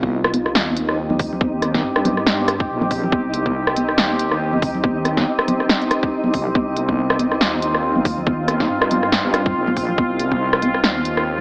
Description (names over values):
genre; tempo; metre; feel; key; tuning
deep dubstep; 140 BPM; 4/4; swing 56% on 16ths, half-time; C minor; A4 = 440 Hz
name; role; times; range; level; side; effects
deep dark ambient pad; sustained chords; 0.0-11.4 s; C4 to G4; -25 LUFS; equal; chorus, built-in reverb
deep soft wobble bass; bass; 0.0-11.4 s; Bb1 to G2; -28 LUFS; equal; chorus
electronic kick drum; drums; 0.0-10.4 s; none; -24 LUFS; equal; overdrive
congas; percussion; 0.0-11.4 s; none; -27 LUFS; equal; dub echo
flickering grainy texture; texture; 0.1-11.4 s; Eb4; -30 LUFS; equal; built-in reverb
deep house drum kit; drums; 0.2-11.2 s; hi-hat, rim click, snare drum; -22 LUFS; equal; none
room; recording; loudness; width
moderate lush hall reverb, RT60 2.5 s; AM radio sound; -19 LUFS; mono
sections
0.0-11.4 A section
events
none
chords
0.0 Cm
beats
0.12 0.55 0.98 | 1.41 1.84 2.27 2.69 | 3.12 3.55 3.98 4.41 | 4.84 5.27 5.70 6.12 | 6.55 6.98 7.41 7.84 | 8.27 8.70 9.12 9.55 | 9.98 10.41 10.84 11.27